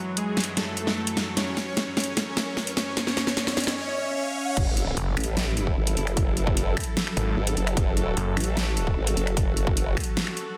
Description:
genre	heavy wobble dubstep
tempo	150 BPM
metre	4/4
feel	half-time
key	F# minor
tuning	A4 = 440 Hz
part	warm studio string section	sustained chords	0.0-10.6 s	F#2 to A4	-36 LUFS	equal	sidechain pumping, low-pass filter
part	riser and impact	sound effects	0.8-6.2 s	none	-39 LUFS	equal	none
part	soft supersaw	melody	0.2-4.6 s	G#3 to C#5	-33 LUFS	equal	tape echo
part	dubstep drum kit	drums	0.2-10.4 s	crash cymbal, finger snaps, hi-hat, snare drum	-30 LUFS	equal	studio ambience
part	formant-sweep wobble bass	bass	4.6-10.0 s	F#1 to A1	-29 LUFS	equal	chorus, overdrive
part	electronic kick drum	drums	4.6-10.1 s	none	-28 LUFS	equal	studio ambience
part	snarling distorted saw bass	bass	5.0-8.4 s	F#1 to G#1	-28 LUFS	equal	distortion, overdrive
room	moderate lush hall reverb, RT60 1.7 s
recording	dense, heavily limited modern master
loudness	-26 LUFS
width	mono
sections	0.0-4.6 A section; 4.6-10.6 B section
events	build-up 0.0-4.6; drum fill 0.0-3.8; filter sweep on string section 0.0-4.6; riser 0.8-4.6; drop 4.6-10.6; impact 4.6-6.2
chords	0.0 F#m7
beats	0.17 0.57 0.97 | 1.37 1.77 2.17 2.57 | 2.97 3.37 3.77 4.17 | 4.57 4.97 5.37 5.77 | 6.17 6.57 6.97 7.37 | 7.77 8.17 8.57 8.97 | 9.37 9.77 10.17 10.57

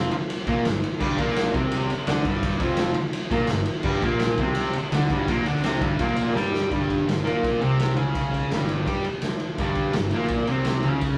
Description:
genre	garage rock duo or trio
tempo	168 BPM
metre	4/4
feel	straight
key	unclear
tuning	A4 = 440 Hz
part	fuzz guitar	riff	0.0-11.2 s	F2 to G4	-26 LUFS	equal	distortion
part	fuzz picked electric bass	bass	0.0-11.2 s	F1 to G2	-32 LUFS	equal	overdrive
part	raw garage drum kit	drums	0.1-11.1 s	crash cymbal, kick drum, ride cymbal, snare drum	-29 LUFS	equal	none
room	wet stone room reverb, RT60 1.0 s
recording	rough rehearsal-room recording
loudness	-24 LUFS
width	mono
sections	0.0-6.7 A section; 6.7-11.2 B section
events	drum fill 6.4-6.7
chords	0.0 G5; 6.7 Gdim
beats	0.30 0.65 | 1.01 1.36 1.72 2.07 | 2.43 2.78 3.14 3.50 | 3.85 4.21 4.56 4.92 | 5.28 5.63 5.99 6.35 | 6.71 7.07 7.43 7.79 | 8.15 8.51 8.87 9.23 | 9.59 9.95 10.31 10.67 | 11.03

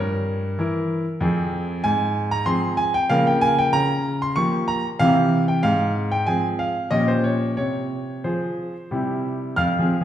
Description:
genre	classical-period piano sonatina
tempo	89-96 BPM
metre	3/4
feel	rubato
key	F minor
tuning	A4 = 440 Hz
part	warm grand piano	solo	0.0-10.0 s	F2 to F6	-19 LUFS	equal	none
room	wet recital hall reverb, RT60 1.6 s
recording	heard from further back in the room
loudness	-19 LUFS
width	side -10 dB against mid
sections	0.0-9.6 A section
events	none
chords	0.0 Edim/G; 1.2 Fm; 1.8 Fm/Ab; 3.1 Bbm/Db; 3.7 Gm7b5/Db; 5.0 C; 5.6 Fm/Ab; 6.9 Gm7b5/Bb; 7.6 Fm/C; 8.9 C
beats	0.58 1.21 | 1.84 2.47 3.10 | 3.73 4.36 4.99 | 5.63 6.26 6.91 | 7.57 8.25 8.91 | 9.57

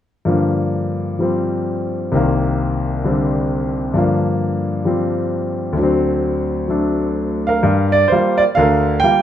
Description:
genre	solo jazz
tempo	130 BPM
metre	4/4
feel	swing 65% on 8ths, rubato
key	G minor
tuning	A4 = 439 Hz
part	clear concert grand piano	solo	0.3-9.2 s	C2 to G5	-15 LUFS	equal	none
room	moderate large studio reverb, RT60 0.8 s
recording	minimal, uncompressed stereo recording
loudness	-15 LUFS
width	side -10 dB against mid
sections	0.3-7.6 A section; 7.6-9.2 B section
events	none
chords	0.3 Gm7; 2.1 Cm7; 4.0 Gm7; 5.8 D7; 7.6 Gm7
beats	| 0.28 0.74 1.21 1.67 | 2.13 2.60 3.05 3.50 | 3.95 4.41 4.86 5.31 | 5.76 6.22 6.68 7.15 | 7.63 8.10 8.56 9.03

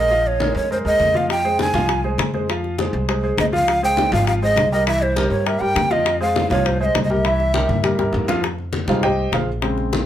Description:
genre	Afro-Cuban jazz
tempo	202 BPM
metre	4/4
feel	straight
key	F minor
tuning	A4 = 440 Hz
part	bright long shakuhachi	melody	0.0-8.1 s	C5 to Ab5	-19 LUFS	right 1 dB	analog delay
part	warm concert grand piano	accompaniment	0.0-10.1 s	Db3 to G5	-23 LUFS	equal	none
part	upright bass	bass	0.0-10.0 s	Ab1 to G2	-24 LUFS	equal	none
part	congas	percussion	0.1-10.1 s	none	-26 LUFS	left 2 dB	none
part	bongos	percussion	1.3-10.1 s	none	-25 LUFS	left 6 dB	none
room	light reverb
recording	none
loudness	-16 LUFS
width	side -11 dB against mid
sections	0.0-8.4 A section; 8.4-10.1 B section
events	drum fill 7.7-8.4; grand piano solo 8.4-10.1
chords	0.0 Bbm7; 1.3 Fm; 3.7 Dbmaj7; 4.9 C7; 6.1 Fmadd9; 7.2 C7; 8.4 Fm9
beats	| 0.11 0.41 0.70 1.00 | 1.30 1.59 1.89 2.19 | 2.49 2.79 3.08 3.38 | 3.68 3.98 4.28 4.57 | 4.87 5.17 5.46 5.76 | 6.06 6.36 6.66 6.95 | 7.25 7.55 7.84 8.14 | 8.44 8.74 9.04 9.33 | 9.63 9.93

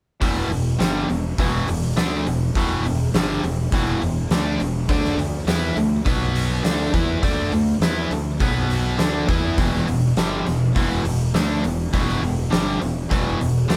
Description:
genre	blues rock power trio and southern rock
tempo	102 BPM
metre	4/4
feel	straight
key	unclear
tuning	A4 = 440 Hz
part	biting overdriven guitar	riff	0.2-13.8 s	E2 to E4	-24 LUFS	equal	none
part	fuzz fingered electric bass	bass	0.2-13.8 s	E1 to E2	-28 LUFS	equal	overdrive
part	oversized low-tuned drum kit	drums	0.2-13.8 s	hi-hat, kick drum, snare drum	-26 LUFS	equal	none
room	moderate studio reverb, RT60 0.6 s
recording	band playing live in one room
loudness	-21 LUFS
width	mono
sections	0.2-13.8 A section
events	none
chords	0.2 E5; 4.9 D5; 6.1 B5; 6.6 D5; 8.4 B5; 9.0 D5; 9.6 E5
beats	| 0.21 0.80 1.38 1.97 | 2.55 3.14 3.72 4.31 | 4.89 5.48 6.06 6.65 | 7.24 7.82 8.41 9.00 | 9.58 10.17 10.76 11.35 | 11.93 12.52 13.11 13.70

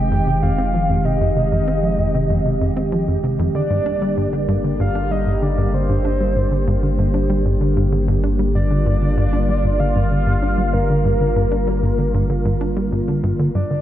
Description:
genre	ambient, sequencer-driven space music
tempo	96 BPM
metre	4/4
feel	straight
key	unclear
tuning	A4 = 444 Hz
part	soft octave-layered synth lead	melody	0.0-13.8 s	Bb4 to G5	-24 LUFS	equal	chorus, tape echo
part	sweeping resonant pad	sustained chords	0.0-13.8 s	D3 to G4	-22 LUFS	equal	chorus
part	tight sequencer bass	riff	0.0-13.8 s	F2 to D4	-21 LUFS	equal	analog chorus, tape echo
part	warm sub bass	bass	0.0-13.8 s	F1 to G1	-22 LUFS	equal	none
room	moderate lush hall reverb, RT60 3.2 s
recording	dreamy mix soaked in reverb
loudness	-16 LUFS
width	side -12 dB against mid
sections	0.0-13.5 A section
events	none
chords	0.0 Fm7; 3.5 Gm7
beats	0.42 | 1.05 1.67 2.30 2.92 | 3.55 4.17 4.80 5.42 | 6.05 6.67 7.30 7.92 | 8.55 9.17 9.80 10.42 | 11.05 11.67 12.30 12.92 | 13.55

